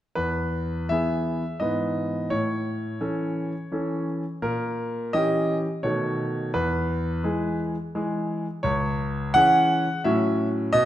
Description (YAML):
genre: classical-period piano sonatina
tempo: 86 BPM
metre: 3/4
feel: straight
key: E major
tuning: A4 = 440 Hz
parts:
  - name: clear concert grand piano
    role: solo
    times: 0.2-10.9 s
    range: C#2 to F#5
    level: -23 LUFS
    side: equal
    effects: none
room: wet recital hall reverb, RT60 1.4 s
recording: none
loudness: -23 LUFS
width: side -12 dB against mid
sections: 0.2-10.9 A section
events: none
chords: 0.2 E; 1.6 E/G#; 2.3 A; 4.4 A#dim7; 5.8 B7; 6.5 E; 8.6 C#m; 10.0 F#m7/A